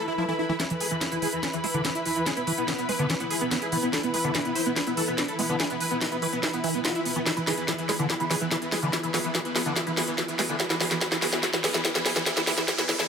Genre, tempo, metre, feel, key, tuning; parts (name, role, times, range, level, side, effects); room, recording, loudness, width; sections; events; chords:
psychedelic trance; 144 BPM; 4/4; straight; A4 = 440 Hz
dense compressed supersaw; melody; 0.0-13.0 s; E3 to C5; -31 LUFS; right 1 dB; phaser, sidechain pumping, low-pass filter, dub echo
pulsing gated texture; sustained chords; 0.0-13.1 s; E3 to A4; -34 LUFS; left 1 dB; chorus, built-in reverb, sidechain pumping
swell and riser; sound effects; 0.0-0.6, 8.7-13.1 s; -36 LUFS; right 2 dB
muted studio string section; texture; 0.0-13.1 s; E4 to B5; -33 LUFS; equal; sidechain pumping
liquid acid bass; riff; 0.2-13.0 s; D3 to F4; -32 LUFS; equal; phaser, auto-pan, sidechain pumping, tape echo
drum and bass drum kit; drums; 0.6-13.1 s; hi-hat, snare drum; -27 LUFS; equal
electronic kick drum; drums; 0.6-12.8 s; -36 LUFS; equal
moderate lush hall reverb, RT60 2.0 s, digital ambience; high-pass filter; -24 LUFS; side -6 dB against mid
0.6-13.1 A section
swell 0.0-0.6; build-up 0.6-13.1; drum fill 0.6-13.1; filter sweep on acid bass 0.6-13.1
0.0 E5